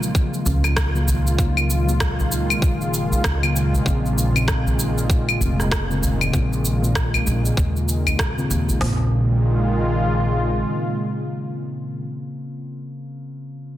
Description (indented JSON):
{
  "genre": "organic downtempo",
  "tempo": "97 BPM",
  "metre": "4/4",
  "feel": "swing 60% on 16ths",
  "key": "Bb minor",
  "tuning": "A4 = 440 Hz",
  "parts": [
    { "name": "muted felt-like synth keys", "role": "accompaniment", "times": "0.0-13.8 s", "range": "Db3 to F4", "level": "-26 LUFS", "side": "left 2 dB", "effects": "chorus, sidechain pumping, low-pass filter, tape echo" },
    { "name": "warm analog pad", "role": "sustained chords", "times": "0.0-12.0 s", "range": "Bb2 to F4", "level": "-24 LUFS", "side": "right 1 dB", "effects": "chorus, sidechain pumping" },
    { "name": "electronic cabasa, rim click and claves", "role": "drums", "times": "0.0-8.8 s", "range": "none", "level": "-25 LUFS", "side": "equal", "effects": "soft clipping on snare" },
    { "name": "organic electronic drum kit", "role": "drums", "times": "0.1-9.0 s", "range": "hi-hat, kick drum, snare drum, toms", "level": "-21 LUFS", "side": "equal", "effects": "none" },
    { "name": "upright bass", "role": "bass", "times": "0.5-10.6 s", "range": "F1 to Eb2", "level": "-22 LUFS", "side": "equal", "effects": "sidechain pumping" },
    { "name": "udu", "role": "percussion", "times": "0.5-8.8 s", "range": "none", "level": "-26 LUFS", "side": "equal", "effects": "none" }
  ],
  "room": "moderate echo chamber reverb, RT60 2.3 s",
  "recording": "dense, heavily limited modern master",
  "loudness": "-18 LUFS",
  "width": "side -13 dB against mid",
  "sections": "0.0-8.8 A section; 8.8-11.3 B section",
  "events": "filter sweep on synth keys 0.0-8.8",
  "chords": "0.0 Gbmaj7; 3.9 Bbmadd9"
}